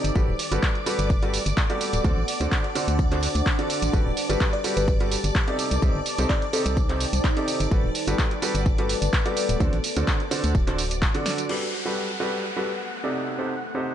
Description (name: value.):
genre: piano house.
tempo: 127 BPM.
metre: 4/4.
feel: swing 53% on 16ths.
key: G major.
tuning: A4 = 440 Hz.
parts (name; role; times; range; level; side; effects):
string machine, violins; sustained chords; 0.0-13.9 s; D5 to F#6; -34 LUFS; equal; ensemble chorus, sidechain pumping.
clear baby grand piano; riff; 0.0-13.9 s; C3 to D5; -28 LUFS; right 1 dB; sidechain pumping, low-pass filter, tape echo.
organ-like FM bass; bass; 0.0-11.1 s; D1 to D2; -26 LUFS; equal; sidechain pumping.
punchy analog drum machine; drums; 0.0-11.6 s; crash cymbal, handclaps, hi-hat, snare drum, tambourine; -29 LUFS; right 2 dB; none.
deep dark ambient pad; texture; 0.0-13.9 s; D4 to A5; -32 LUFS; left 1 dB; chorus, built-in reverb, sidechain pumping.
electronic kick drum; drums; 0.2-11.1 s; none; -23 LUFS; equal; none.
bell-like FM electric piano; melody; 4.3-6.7 s; A4 to D5; -30 LUFS; left 2 dB; chorus, tape echo.
downlifter; sound effects; 11.5-13.9 s; none; -32 LUFS; equal; none.
room: light reverb.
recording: nothing above 10.3 kHz.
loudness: -21 LUFS.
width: side -10 dB against mid.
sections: 0.0-11.5 A section; 11.5-13.9 B section.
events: drum fill 11.3; filter sweep on string machine 11.5-13.9.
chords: 0.2 Gmaj9; 2.0 D7; 3.9 Gmaj9; 5.6 Cm6; 7.7 Gmaj9; 9.6 D7; 11.5 Gmaj9; 13.1 Cm6.